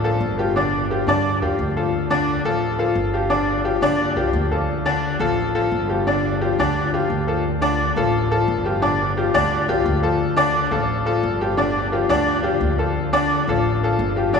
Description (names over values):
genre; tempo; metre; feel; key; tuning
latin, salsa; 174 BPM; 4/4; straight; unclear; A4 = 438 Hz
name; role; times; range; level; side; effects
bright upright piano; accompaniment; 0.0-14.4 s; D3 to D5; -19 LUFS; left 2 dB; none
upright bass; bass; 0.0-14.4 s; G1 to G2; -24 LUFS; equal; none
room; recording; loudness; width
wet cathedral reverb, RT60 4.2 s; recorded in a church or concert hall, small room reverb; -18 LUFS; side -5 dB against mid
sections
0.0-7.4 A section; 7.4-14.4 A section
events
none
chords
0.0 Dm (rootless); 0.5 G5; 1.9 Dm; 3.3 Gm7; 4.7 G5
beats
0.20 | 0.55 0.89 1.24 1.58 | 1.93 2.27 2.62 2.96 | 3.30 3.65 3.99 4.34 | 4.68 5.03 5.37 5.72 | 6.06 6.41 6.75 7.10 | 7.44 7.79 8.13 8.47 | 8.82 9.16 9.51 9.85 | 10.20 10.54 10.89 11.23 | 11.58 11.92 12.27 12.61 | 12.96 13.30 13.64 13.99 | 14.33